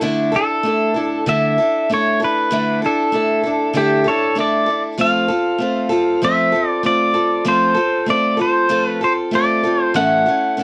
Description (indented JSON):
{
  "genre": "rock",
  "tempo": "97 BPM",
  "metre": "4/4",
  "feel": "straight",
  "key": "unclear",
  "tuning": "A4 = 440 Hz",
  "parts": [
    { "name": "picked acoustic archtop guitar", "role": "accompaniment", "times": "0.0-10.6 s", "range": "A2 to A4", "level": "-20 LUFS", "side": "equal", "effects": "none" },
    { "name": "pedal steel guitar", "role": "melody", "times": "0.4-10.6 s", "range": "G4 to F#5", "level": "-20 LUFS", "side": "equal", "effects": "none" }
  ],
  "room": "moderate booth ambience, RT60 0.2 s",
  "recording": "dark, warm production",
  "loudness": "-17 LUFS",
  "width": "mono",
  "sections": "0.0-5.0 A section; 5.0-10.6 B section",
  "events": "none",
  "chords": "0.0 Dsus2; 5.0 F; 9.9 A"
}